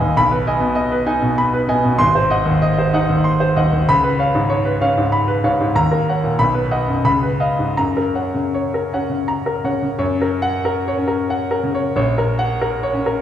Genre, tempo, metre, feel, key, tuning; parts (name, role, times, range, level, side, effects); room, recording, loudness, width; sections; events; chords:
classical, romantic character piece for solo piano; 78-101 BPM; 3/4; rubato; F# major; A4 = 440 Hz
clear grand piano; solo; 0.0-13.2 s; G#1 to B#5; -15 LUFS; equal
wet recital hall reverb, RT60 1.4 s; heard from further back in the room; -15 LUFS; side -10 dB against mid
0.0-10.0 A section; 10.0-13.2 A section
0.2 G#m/B; 2.0 G#7; 3.9 C#7; 5.8 D#m7; 6.4 B; 7.1 C#9; 7.8 F#; 12.0 F#/A#